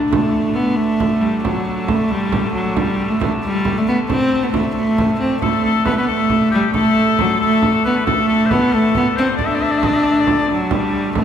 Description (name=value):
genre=medieval dance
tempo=91 BPM (dotted quarters)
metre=6/8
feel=straight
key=D mixolydian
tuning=A4 = 440 Hz
part: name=rich hurdy-gurdy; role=drone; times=0.0-11.2 s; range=D3 to A3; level=-26 LUFS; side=equal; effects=none
part: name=rich viola da gamba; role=melody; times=0.1-11.2 s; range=F#3 to D4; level=-16 LUFS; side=equal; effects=none
part: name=frame drum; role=percussion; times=0.1-11.2 s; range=none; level=-23 LUFS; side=right 3 dB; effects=none
part: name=clear shawm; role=second line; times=5.4-10.5 s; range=G4 to E5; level=-20 LUFS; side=left 6 dB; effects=none
room=wet church reverb, RT60 3.7 s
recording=recorded in a church or concert hall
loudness=-14 LUFS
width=side -8 dB against mid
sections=0.1-10.7 A section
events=none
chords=none